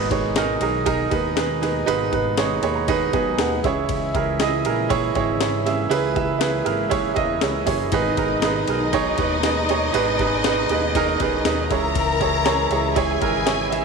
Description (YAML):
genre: piano-driven pop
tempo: 119 BPM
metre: 4/4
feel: straight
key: unclear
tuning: A4 = 440 Hz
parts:
  - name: clear baby grand piano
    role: accompaniment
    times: 0.0-13.8 s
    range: G#2 to B5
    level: -21 LUFS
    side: right 8 dB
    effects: none
  - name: percussive tonewheel organ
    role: sustained chords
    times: 0.0-13.8 s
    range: B2 to E4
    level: -28 LUFS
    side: left 2 dB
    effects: overdrive, slow rotary speaker
  - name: chorused synth bass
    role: bass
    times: 0.0-13.8 s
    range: F#1 to E2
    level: -28 LUFS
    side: left 2 dB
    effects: none
  - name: breakbeat sampler-style drum kit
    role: drums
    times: 0.1-13.8 s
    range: hi-hat, kick drum, ride cymbal, snare drum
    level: -28 LUFS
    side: left 6 dB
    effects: none
  - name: warm symphonic violin section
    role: second line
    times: 7.9-13.8 s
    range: D#4 to A#5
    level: -24 LUFS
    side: left 4 dB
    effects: none
room: moderate echo chamber reverb, RT60 2.2 s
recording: 1960s-style stereo with parts hard left and right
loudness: -18 LUFS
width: side -4 dB against mid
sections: 0.0-13.8 A section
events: grand piano fill 2.4-3.9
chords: 0.0 G#m; 3.6 C#m; 7.9 G#m; 11.7 C#m